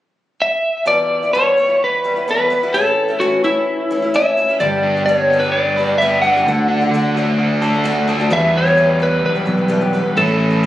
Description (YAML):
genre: folk rock and heartland rock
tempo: 129 BPM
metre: 4/4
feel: straight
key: E dorian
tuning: A4 = 440 Hz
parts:
  - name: electric slide guitar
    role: melody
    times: 0.4-10.7 s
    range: E4 to F#5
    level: -16 LUFS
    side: equal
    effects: tape echo
  - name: picked old ladder-braced acoustic guitar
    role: accompaniment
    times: 0.9-10.7 s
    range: E2 to A4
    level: -21 LUFS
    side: left 3 dB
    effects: none
  - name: overdriven semi-hollow guitar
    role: riff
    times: 4.6-10.7 s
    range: A2 to B4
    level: -19 LUFS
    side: right 1 dB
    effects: spring reverb
  - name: picked electric bass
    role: bass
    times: 4.6-10.7 s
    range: G1 to E2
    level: -20 LUFS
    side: equal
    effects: none
room: light reverb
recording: recorded on a phone in the room, club reverb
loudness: -13 LUFS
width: side -14 dB against mid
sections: 0.9-8.3 A section; 8.3-10.7 B section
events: none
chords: 0.0 N.C.; 0.9 Em; 2.7 A; 4.6 G; 6.5 D; 8.3 Em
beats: 0.40 | 0.86 1.33 1.80 2.27 | 2.74 3.21 3.67 4.14 | 4.61 5.07 5.54 6.00 | 6.47 6.93 7.40 7.86 | 8.32 8.79 9.25 9.72 | 10.18 10.64